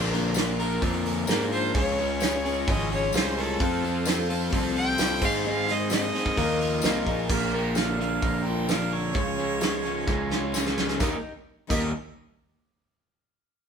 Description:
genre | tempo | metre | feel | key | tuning
folk rock and heartland rock | 130 BPM | 4/4 | straight | unclear | A4 = 439 Hz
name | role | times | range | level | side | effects
warm fiddle | melody | 0.0-6.8 s | A4 to G5 | -29 LUFS | equal | none
dark upright piano | accompaniment | 0.0-11.9 s | Bb3 to D5 | -38 LUFS | right 4 dB | none
picked steel-string acoustic guitar | accompaniment | 0.0-11.9 s | Bb2 to Db5 | -34 LUFS | left 4 dB | none
pedal harmonium | sustained chords | 0.0-11.3 s | C4 to Bb4 | -36 LUFS | right 1 dB | none
crunchy overdriven guitar | riff | 0.0-11.9 s | Ab2 to Bb4 | -30 LUFS | equal | none
modern bright picked electric bass | bass | 0.0-11.9 s | Ab1 to Ab2 | -31 LUFS | left 1 dB | none
soft brush drum kit | drums | 0.1-11.8 s | crash cymbal, hi-hat, kick drum, snare drum | -28 LUFS | right 1 dB | none
tambourine | percussion | 0.3-11.9 s | none | -37 LUFS | left 6 dB | none
clear harmonica | second line | 7.3-11.9 s | Db5 to G5 | -33 LUFS | right 4 dB | none
room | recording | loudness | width
moderate studio reverb, RT60 0.9 s | band playing live in one room | -23 LUFS | side -7 dB against mid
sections
0.0-7.3 A section; 7.3-11.0 B section; 11.0-12.9 C section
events
fiddle solo 0.0-7.3; drum fill 10.1-11.0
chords
0.0 Bb; 1.7 Db; 3.6 F; 5.2 Ab; 6.4 Ebsus2; 7.3 Bb; 9.2 Db; 11.0 Eb

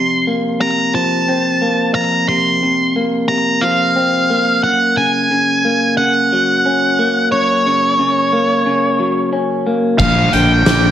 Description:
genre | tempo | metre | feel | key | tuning
post-rock | 89 BPM | 4/4 | straight | unclear | A4 = 438 Hz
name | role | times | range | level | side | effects
octave-fuzz lead guitar | melody | 0.0-10.9 s | Db5 to C6 | -15 LUFS | equal | distortion, slapback echo
electric guitar through a small old amp | arpeggios | 0.0-10.9 s | F2 to Db4 | -16 LUFS | left 1 dB | warbly pitch drift, slapback echo
glockenspiel with hard plastic mallets | arpeggios | 10.0-10.9 s | D6 to F6 | -26 LUFS | right 7 dB | slapback echo
fuzz fingered electric bass | bass | 10.0-10.9 s | Bb1 | -15 LUFS | right 1 dB | overdrive
oversized low-tuned drum kit | drums | 10.0-10.8 s | crash cymbal, hi-hat, kick drum, snare drum | -15 LUFS | equal | none
room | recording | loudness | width
light reverb, small room reverb | none | -12 LUFS | side -10 dB against mid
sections
0.0-10.0 A section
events
none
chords
0.0 Fsus4; 4.6 Gb; 10.0 Bb

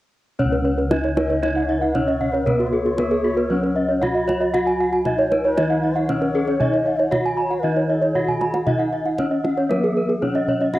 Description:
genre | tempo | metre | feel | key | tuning
Balinese gamelan | 116 BPM | 4/4 | straight | Db slendro | A4 = 440 Hz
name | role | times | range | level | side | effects
gamelan-type bronze metallophone | melody | 0.4-10.8 s | Cb4-45c to Gb4-35c | -23 LUFS | equal | cassette tape
gamelan-type bronze metallophone | arpeggios | 0.4-10.8 s | Gb4-35c to Cb6-45c | -25 LUFS | left 3 dB | cassette tape
gamelan-type bossed gongs | bass | 0.4-10.8 s | Db2 to Cb5-45c | -27 LUFS | equal | none
kendang | percussion | 0.4-10.8 s | none | -27 LUFS | right 1 dB | none
gamelan-type bronze metallophone | arpeggios | 0.5-10.7 s | Gb4-35c to Ab5+25c | -24 LUFS | right 2 dB | cassette tape
mellow bansuri | second line | 1.1-10.8 s | Ab4+23c to Gb5-33c | -29 LUFS | left 3 dB | cassette tape
room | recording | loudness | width
wet spring reverb, RT60 1.8 s, small room ambience | home recording on cassette | -18 LUFS | side -15 dB against mid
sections
0.4-10.8 A section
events
drum fill 8.2-8.7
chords
none

